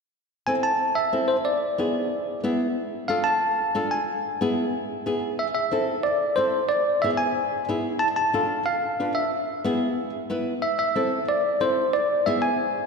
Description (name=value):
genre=latin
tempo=183 BPM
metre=4/4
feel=straight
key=A harmonic minor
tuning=A4 = 440 Hz
part: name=bell-like tine electric piano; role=melody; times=0.5-12.9 s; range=C5 to A5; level=-23 LUFS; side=equal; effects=medium stereo tremolo
part: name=flamenco guitar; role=accompaniment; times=0.5-12.5 s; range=B3 to B4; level=-27 LUFS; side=equal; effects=none
room=wet church reverb, RT60 3.1 s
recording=recorded in a church or concert hall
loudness=-22 LUFS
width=side -4 dB against mid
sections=0.1-5.4 A section; 5.4-12.9 B section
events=none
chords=0.1 Am; 1.5 E7; 2.8 Dm; 4.1 E; 5.4 Am; 6.7 E7; 8.0 Dm; 9.3 E; 10.6 Am; 11.9 E7